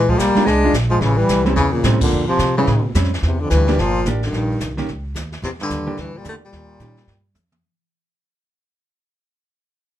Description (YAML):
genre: jazz, small-group swing and bop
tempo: 218 BPM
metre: 4/4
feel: swing 62% on 8ths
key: unclear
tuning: A4 = 442 Hz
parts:
  - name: mellow baritone saxophone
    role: melody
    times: 0.0-7.3 s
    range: A2 to A3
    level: -20 LUFS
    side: left 4 dB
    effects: none
  - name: trombone with metal mute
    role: second line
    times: 0.0-7.3 s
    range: E2 to D4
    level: -23 LUFS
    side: right 4 dB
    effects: none
  - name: upright bass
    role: bass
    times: 0.0-7.6 s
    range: G1 to C3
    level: -20 LUFS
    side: right 1 dB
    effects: none
  - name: jazz brush drum kit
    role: drums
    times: 0.1-7.8 s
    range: brushed snare drum, crash cymbal, hi-hat, kick drum, snare drum, toms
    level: -27 LUFS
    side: equal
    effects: none
  - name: vintage hollow-body jazz guitar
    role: accompaniment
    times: 0.4-7.0 s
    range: Eb3 to G4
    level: -22 LUFS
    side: right 2 dB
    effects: none
room: moderate studio reverb, RT60 0.5 s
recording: none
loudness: -15 LUFS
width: side -12 dB against mid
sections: 0.0-3.2 A section; 3.2-7.6 B section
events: band accent 2.0; fade-out 3.2-7.6; drum fill 7.4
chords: 0.0 Bb7; 1.0 A7#9; 2.1 Bbm69/F; 2.7 A7#9; 3.2 Em7b5; 4.3 Eb7; 5.4 Em7b5; 6.5 Eb7